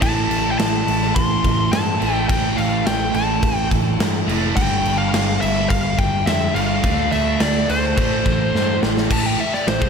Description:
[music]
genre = hard rock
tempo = 106 BPM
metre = 4/4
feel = straight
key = A minor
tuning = A4 = 440 Hz
[part]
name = high-gain lead guitar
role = melody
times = 0.0-9.9 s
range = C5 to C6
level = -22 LUFS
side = left 2 dB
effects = distortion, slapback echo
[part]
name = crunchy overdriven guitar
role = riff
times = 0.0-9.9 s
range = G2 to D4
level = -21 LUFS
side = right 3 dB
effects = slapback echo
[part]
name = picked electric bass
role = bass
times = 0.0-9.9 s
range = F1 to G2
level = -24 LUFS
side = equal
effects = none
[part]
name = big rock drum kit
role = drums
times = 0.0-9.9 s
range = crash cymbal, kick drum, snare drum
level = -21 LUFS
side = equal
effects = none
[sound]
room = moderate lush hall reverb, RT60 2.3 s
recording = big arena sound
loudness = -16 LUFS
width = side -6 dB against mid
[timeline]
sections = 0.0-9.1 A section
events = drum fill 8.5-9.1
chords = 0.0 A5; 4.6 G5; 6.8 D5; 8.0 Am

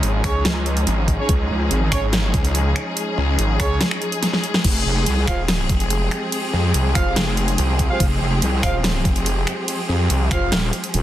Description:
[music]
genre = heavy wobble dubstep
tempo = 143 BPM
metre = 4/4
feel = half-time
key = F minor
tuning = A4 = 444 Hz
[part]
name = warm studio string section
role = sustained chords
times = 0.0-11.0 s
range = F3 to Ab4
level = -24 LUFS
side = left 1 dB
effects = sidechain pumping
[part]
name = snarling distorted saw bass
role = bass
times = 0.0-10.5 s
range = Eb1 to F2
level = -20 LUFS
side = equal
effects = distortion, overdrive
[part]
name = dubstep drum kit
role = drums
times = 0.0-11.0 s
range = crash cymbal, finger snaps, hi-hat, ride cymbal, snare drum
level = -24 LUFS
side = equal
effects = overdrive
[part]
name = clear brass ensemble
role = stabs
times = 0.2-10.5 s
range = Db4 to F5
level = -28 LUFS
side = right 2 dB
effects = digital delay
[part]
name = electronic kick drum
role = drums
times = 0.2-10.4 s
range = none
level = -21 LUFS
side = equal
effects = overdrive
[part]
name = wobble bass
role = bass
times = 0.5-1.9, 4.6-11.0 s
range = Eb1 to Db2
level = -20 LUFS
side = equal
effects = chorus, overdrive
[sound]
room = light reverb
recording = dense, heavily limited modern master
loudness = -17 LUFS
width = side -13 dB against mid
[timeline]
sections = 0.0-11.0 A section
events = drum fill 4.2-4.6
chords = 0.0 Dbadd9; 4.6 Fmadd9

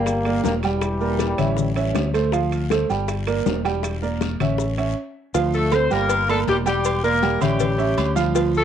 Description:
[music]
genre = latin, salsa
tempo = 159 BPM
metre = 4/4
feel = straight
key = D minor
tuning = A4 = 440 Hz
[part]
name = bright trombone section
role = melody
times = 0.0-2.1 s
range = E3 to Bb3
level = -25 LUFS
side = left 2 dB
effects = cassette tape, plate reverb
[part]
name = clear concert grand piano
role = accompaniment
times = 0.0-8.6 s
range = F3 to G5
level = -23 LUFS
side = right 7 dB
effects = cassette tape, plate reverb
[part]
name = fingered electric bass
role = bass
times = 0.0-8.6 s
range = E1 to D2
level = -24 LUFS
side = left 2 dB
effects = none
[part]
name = bongos and cowbell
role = percussion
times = 0.1-8.5 s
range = none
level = -29 LUFS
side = left 12 dB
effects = none
[part]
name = congas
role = percussion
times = 0.1-8.6 s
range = none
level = -28 LUFS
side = left 12 dB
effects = none
[part]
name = guiro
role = percussion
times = 0.1-8.6 s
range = none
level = -39 LUFS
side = left 14 dB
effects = none
[part]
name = maracas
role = percussion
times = 0.1-8.6 s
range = none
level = -38 LUFS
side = left 13 dB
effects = none
[part]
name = timbales and agogo bells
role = percussion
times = 0.1-8.5 s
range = none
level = -33 LUFS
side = right 8 dB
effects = none
[part]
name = brilliant horn section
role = melody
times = 5.5-8.6 s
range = G3 to C5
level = -21 LUFS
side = left 3 dB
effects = cassette tape
[sound]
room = moderate small room reverb, RT60 0.5 s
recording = home recording on cassette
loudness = -19 LUFS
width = side -9 dB against mid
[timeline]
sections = 0.0-5.3 A section; 5.3-8.6 B section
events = stop 5.0-5.3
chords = 0.1 Gm; 0.8 Em7b5; 1.6 A7; 2.3 Dm7; 3.1 Gm; 3.8 Em7b5; 4.6 A; 5.3 Dm7; 6.1 Gm; 6.8 Em7b5; 7.6 A7

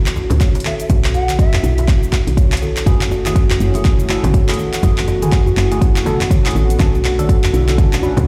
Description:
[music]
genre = afro house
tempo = 122 BPM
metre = 4/4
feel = swing 59% on 16ths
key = F# minor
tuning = A4 = 440 Hz
[part]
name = buzzing kalimba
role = arpeggios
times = 0.0-8.1 s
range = C#4 to C#5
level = -25 LUFS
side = equal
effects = sidechain pumping, digital delay
[part]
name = woody FM bass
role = bass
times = 0.0-8.3 s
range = F#1 to D2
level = -21 LUFS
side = equal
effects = sidechain pumping
[part]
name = deep house drum kit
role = drums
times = 0.1-8.3 s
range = handclaps, hi-hat, shaker, toms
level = -25 LUFS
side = equal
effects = small room reverb
[part]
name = congas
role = percussion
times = 0.2-8.3 s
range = none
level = -26 LUFS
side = equal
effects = none
[part]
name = djembe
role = percussion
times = 0.2-8.3 s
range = none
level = -26 LUFS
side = equal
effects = none
[part]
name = electronic kick drum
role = drums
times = 0.4-7.9 s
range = none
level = -16 LUFS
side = equal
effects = small room reverb
[part]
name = breathy concert flute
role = melody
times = 0.7-1.9 s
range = E5 to F#5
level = -28 LUFS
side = equal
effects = digital delay
[part]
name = warm analog pad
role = sustained chords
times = 2.9-8.3 s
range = D3 to F#4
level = -27 LUFS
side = equal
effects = chorus, sidechain pumping
[part]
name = bell-like tine electric piano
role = stabs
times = 2.9-8.2 s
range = A3 to B4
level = -28 LUFS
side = equal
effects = phaser, sidechain pumping, digital delay
[sound]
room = small room ambience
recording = played on a big sound system in a bare room, large studio reverb, faint mains hum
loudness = -15 LUFS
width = mono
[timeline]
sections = 0.0-8.3 A section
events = none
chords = 0.0 B5; 2.9 F#m7; 6.8 Bm7

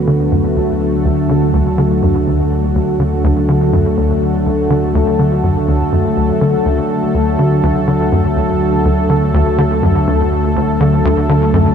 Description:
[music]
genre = ambient, sequencer-driven space music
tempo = 123 BPM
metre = 4/4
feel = straight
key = D major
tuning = A4 = 440 Hz
[part]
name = sweeping resonant pad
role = sustained chords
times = 0.0-11.7 s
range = D3 to B4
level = -14 LUFS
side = equal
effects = chorus, shimmer reverb
[part]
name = warm sub bass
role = bass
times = 0.0-11.7 s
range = D2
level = -21 LUFS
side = equal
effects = none
[part]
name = tight sequencer bass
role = riff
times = 0.1-11.7 s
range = D2 to D3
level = -16 LUFS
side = equal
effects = lush chorus, tape echo
[sound]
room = wet huge ambient reverb, RT60 7.5 s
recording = cassette tape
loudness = -12 LUFS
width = side -7 dB against mid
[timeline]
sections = 0.0-11.7 A section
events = filter sweep on analog synth bass 0.0-11.7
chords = 0.0 D

